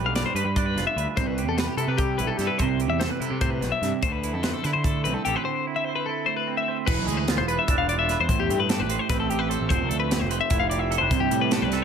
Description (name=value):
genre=math rock and midwest emo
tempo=295 BPM (eighths)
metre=7/8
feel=straight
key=unclear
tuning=A4 = 440 Hz
part: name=clean electric guitar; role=accompaniment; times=0.0-11.8 s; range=A2 to C5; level=-28 LUFS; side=right 14 dB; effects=none
part: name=fuzz picked electric bass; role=bass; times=0.0-11.8 s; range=E1 to D3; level=-28 LUFS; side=equal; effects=overdrive
part: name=twelve-string electric guitar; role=arpeggios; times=0.1-11.8 s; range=G4 to F5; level=-26 LUFS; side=left 9 dB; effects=spring reverb
part: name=crisp fusion drum kit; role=drums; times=0.2-11.8 s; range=crash cymbal, hi-hat, kick drum, snare drum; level=-28 LUFS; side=equal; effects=none
room=light reverb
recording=none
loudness=-22 LUFS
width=side -7 dB against mid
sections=0.0-6.9 A section; 6.9-11.8 B section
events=none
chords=0.0 G7; 1.2 Cmaj7; 4.0 D7sus2; 6.9 E7b9; 8.3 Am7; 9.7 Fmaj9; 11.1 Cmaj7